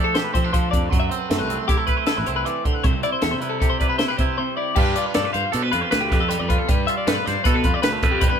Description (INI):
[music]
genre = math rock and midwest emo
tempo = 156 BPM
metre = 5/4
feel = straight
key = unclear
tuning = A4 = 440 Hz
[part]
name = twangy electric guitar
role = accompaniment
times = 0.0-8.4 s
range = C3 to C5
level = -24 LUFS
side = right 6 dB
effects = none
[part]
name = twelve-string electric guitar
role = arpeggios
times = 0.0-8.4 s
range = G4 to F5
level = -24 LUFS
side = left 8 dB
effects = none
[part]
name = fuzz fingered electric bass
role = bass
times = 0.0-8.4 s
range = A1 to F3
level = -26 LUFS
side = equal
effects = overdrive
[part]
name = compact cocktail drum kit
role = drums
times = 0.2-8.3 s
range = crash cymbal, hi-hat, kick drum, snare drum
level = -22 LUFS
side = equal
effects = none
[sound]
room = light reverb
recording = band playing live in one room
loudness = -18 LUFS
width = side -7 dB against mid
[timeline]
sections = 0.0-4.8 A section; 4.8-8.4 B section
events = break 4.4-4.8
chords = 0.0 F69; 0.9 D13; 2.8 Cmaj7; 4.8 G7